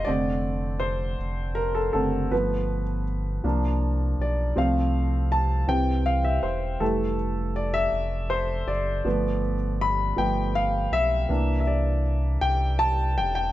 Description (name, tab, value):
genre	slow gospel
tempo	54 BPM (dotted quarters)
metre	6/8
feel	straight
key	F major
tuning	A4 = 440 Hz
part	warm concert grand piano	accompaniment	0.0-13.5 s	D3 to B5	-25 LUFS	equal	none
part	sub bass with octave	bass	0.0-13.5 s	E1 to C2	-26 LUFS	equal	none
room	little or no reverb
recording	nothing above 7.9 kHz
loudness	-22 LUFS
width	side -14 dB against mid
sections	0.0-13.5 A section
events	grand piano solo 0.0-13.5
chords	0.1 F6; 2.3 G7; 3.4 C9sus4; 4.6 F/C; 5.7 C; 6.8 Fmaj7; 9.1 G7; 11.3 C7